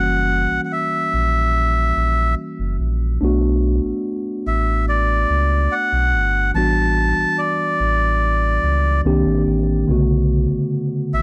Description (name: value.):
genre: contemporary R&B.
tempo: 72 BPM.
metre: 4/4.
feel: straight.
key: B minor.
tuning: A4 = 439 Hz.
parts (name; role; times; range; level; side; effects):
melodica; melody; 0.0-11.2 s; D5 to A5; -22 LUFS; equal; none.
mellow tine electric piano; accompaniment; 0.0-11.2 s; C#3 to G4; -24 LUFS; equal; none.
sub bass with octave; bass; 0.0-11.2 s; F#1 to C#2; -22 LUFS; equal; none.
room: little or no reverb.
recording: dry, gritty hardware recording.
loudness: -19 LUFS.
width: mono.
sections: 0.0-11.2 A section.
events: none.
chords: 0.0 F#7b9; 3.2 Bm9; 6.5 A13sus4; 9.0 Cm9; 9.9 Bm9.